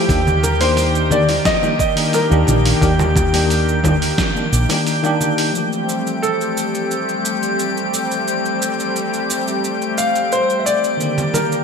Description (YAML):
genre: sunset chillout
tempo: 88 BPM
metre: 4/4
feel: straight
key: F major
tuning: A4 = 440 Hz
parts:
  - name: warm concert grand piano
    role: melody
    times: 0.0-11.6 s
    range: G4 to F5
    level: -20 LUFS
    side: left 1 dB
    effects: wide subtle chorus, digital delay
  - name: tine electric piano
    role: accompaniment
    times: 0.0-11.6 s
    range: D3 to G4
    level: -23 LUFS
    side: left 1 dB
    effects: fast stereo tremolo, auto-pan, digital delay
  - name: lush unison pad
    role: sustained chords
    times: 0.0-11.6 s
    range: Eb3 to G4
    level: -23 LUFS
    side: equal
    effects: chorus
  - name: drifting glass-harmonics texture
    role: texture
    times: 0.0-11.6 s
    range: G5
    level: -25 LUFS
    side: left 1 dB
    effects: chorus, built-in reverb
  - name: woody fretless electric bass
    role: bass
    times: 0.1-4.6 s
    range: Bb1 to Eb2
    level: -18 LUFS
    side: equal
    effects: none
  - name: dusty soul sampler-style drum kit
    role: drums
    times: 0.1-11.6 s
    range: cabasa, congas, hi-hat, snare drum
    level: -23 LUFS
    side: equal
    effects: overdrive, gated reverb
  - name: electronic kick drum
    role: drums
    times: 0.1-4.3 s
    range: none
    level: -22 LUFS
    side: equal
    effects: overdrive
  - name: congas and bongos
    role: percussion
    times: 0.3-5.3, 11.2-11.5 s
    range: none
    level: -26 LUFS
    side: right 3 dB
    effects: none
room: wet lush hall reverb, RT60 1.6 s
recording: bright 1980s-style digital production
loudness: -15 LUFS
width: side -6 dB against mid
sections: 0.0-5.5 A section; 5.5-11.6 B section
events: none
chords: 0.1 Ebmaj7; 5.5 Fmaj9; 11.0 Ebmaj7